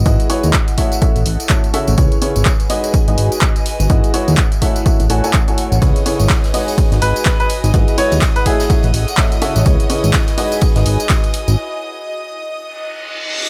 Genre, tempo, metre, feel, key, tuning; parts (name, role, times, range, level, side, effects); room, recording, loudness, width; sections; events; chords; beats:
piano house; 125 BPM; 4/4; swing 59% on 16ths; A4 = 440 Hz
fat analog bass; bass; 0.0-11.6 s; G#1 to D#2; -17 LUFS; equal; sidechain pumping
airy breathy pad; texture; 0.0-11.6 s; E4 to G#5; -30 LUFS; equal; chorus, phaser, sidechain pumping
clear upright piano; riff; 0.1-11.3 s; C#3 to G#5; -23 LUFS; equal; sidechain pumping, delay
electronic kick drum; drums; 0.1-11.2 s; -17 LUFS; equal
punchy analog drum machine; drums; 0.1-11.6 s; handclaps, hi-hat; -24 LUFS; equal
tambourine; percussion; 0.1-11.6 s; -32 LUFS; equal
clear studio violin section; sustained chords; 5.8-13.5 s; D#5 to D#6; -30 LUFS; equal; sidechain pumping
big rock drum kit; drums; 5.8-11.5 s; hi-hat, ride cymbal, snare drum; -37 LUFS; equal
bright baby grand piano; melody; 7.0-8.8 s; G#4 to C#5; -22 LUFS; equal; delay
reverse cymbal; sound effects; 12.8-13.5 s; -24 LUFS; equal
little or no reverb; -15 LUFS; mono
0.0-13.5 A section
break 11.6-13.5; reverse cymbal 12.8-13.5
0.0 Emaj9/G#; 0.8 F#m7/A; 2.0 C#m7; 2.7 G#m7; 3.7 Emaj9/G#; 4.6 F#m7/A; 5.8 C#m7; 6.5 G#m7; 7.5 Emaj9/G#; 8.5 F#m7/A; 9.7 C#m7; 10.4 G#m7; 11.3 Emaj9/G#; 12.3 N.C.
| 0.06 0.54 1.02 1.50 | 1.98 2.46 2.94 3.42 | 3.90 4.38 4.86 5.34 | 5.82 6.30 6.78 7.26 | 7.74 8.22 8.70 9.18 | 9.66 10.14 10.62 11.10 | 11.58 12.06 12.54 13.02